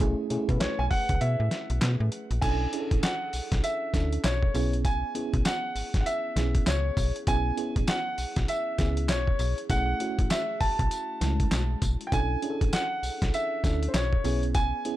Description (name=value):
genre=R&B, new jack swing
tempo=99 BPM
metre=4/4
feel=swing 61% on 16ths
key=B dorian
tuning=A4 = 440 Hz
part: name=FM electric piano with auto-pan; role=accompaniment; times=0.0-15.0 s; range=G#3 to B4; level=-33 LUFS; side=right 2 dB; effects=none
part: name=slap-like FM bass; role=bass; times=0.0-14.7 s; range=G#1 to B2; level=-28 LUFS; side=equal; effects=none
part: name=dusty soul sampler-style drum kit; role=drums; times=0.0-15.0 s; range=crash cymbal, handclaps, hi-hat, kick drum, snare drum, tambourine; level=-28 LUFS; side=equal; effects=none
part: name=warm concert grand piano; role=melody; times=0.6-15.0 s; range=C5 to A5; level=-31 LUFS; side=equal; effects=none
room=little or no reverb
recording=dark, warm production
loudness=-25 LUFS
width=side -14 dB against mid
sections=0.0-2.4 A section; 2.4-15.0 B section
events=kick muted 1.2-2.4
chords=0.0 Amaj9; 2.4 Bm11; 4.5 C#m7; 7.3 Amaj9 (rootless); 9.7 F#m7; 12.1 Bm11; 14.2 C#m7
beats=| 0.00 0.61 1.21 1.82 | 2.42 3.03 3.64 4.24 | 4.85 5.45 6.06 6.67 | 7.27 7.88 8.48 9.09 | 9.70 10.30 10.91 11.52 | 12.12 12.73 13.33 13.94 | 14.54